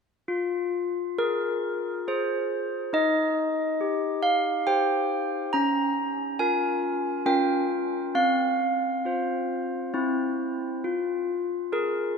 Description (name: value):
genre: classical, tune for handbells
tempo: 68 BPM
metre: 3/4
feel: straight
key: F minor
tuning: A4 = 443 Hz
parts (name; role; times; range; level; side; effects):
- handbells; solo; 0.3-12.2 s; C4 to Bb5; -24 LUFS; equal; none
room: wet church reverb, RT60 4.1 s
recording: none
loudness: -24 LUFS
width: side -5 dB against mid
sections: 0.3-12.2 A section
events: none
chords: 0.3 Fm; 2.9 Cm/Eb; 5.5 Bbm/Db; 8.2 Csus4; 10.0 C; 10.9 Fm